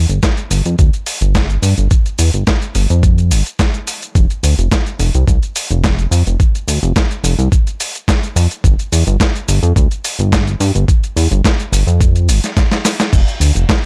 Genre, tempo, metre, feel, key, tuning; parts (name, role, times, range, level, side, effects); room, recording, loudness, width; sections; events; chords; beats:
nu-disco, nu disco; 107 BPM; 4/4; straight; A4 = 440 Hz
chorused synth bass; bass; 0.0-13.7 s; F1 to G2; -15 LUFS; equal
dusty soul sampler-style drum kit; drums; 0.1-13.8 s; crash cymbal, hi-hat, shaker, snare drum; -21 LUFS; equal; overdrive
electronic kick drum; drums; 0.2-13.8 s; -16 LUFS; equal; overdrive
little or no reverb; dry, gritty hardware recording, transformer saturation; -14 LUFS; mono
0.0-13.9 A section
drum fill 12.6-13.1
0.23 0.79 1.35 | 1.91 2.47 3.03 3.59 | 4.15 4.71 5.28 5.84 | 6.40 6.96 7.52 8.08 | 8.64 9.20 9.76 10.32 | 10.88 11.44 12.01 12.57 | 13.13 13.69